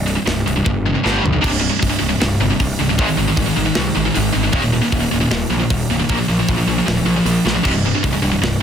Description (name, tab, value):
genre	heavy metal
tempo	154 BPM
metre	4/4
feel	straight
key	C minor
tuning	A4 = 440 Hz
part	high-gain distorted guitar	riff	0.0-8.6 s	C2 to Bb3	-17 LUFS	equal	distortion
part	fuzz picked electric bass	bass	0.0-8.5 s	C1 to C2	-21 LUFS	equal	overdrive
part	tight metal drum kit	drums	0.1-8.5 s	crash cymbal, hi-hat, kick drum, snare drum, toms	-22 LUFS	right 1 dB	soft clipping on kick
room	small room ambience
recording	dense, heavily limited modern master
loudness	-14 LUFS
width	side -8 dB against mid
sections	0.0-1.4 A section; 1.4-8.6 B section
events	drum fill 0.7-1.4, 7.4; half time 1.4-8.6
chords	0.0 C5; 1.0 G5; 1.4 C5; 3.0 Ab5; 4.5 Eb5; 6.1 Bb5; 7.6 C5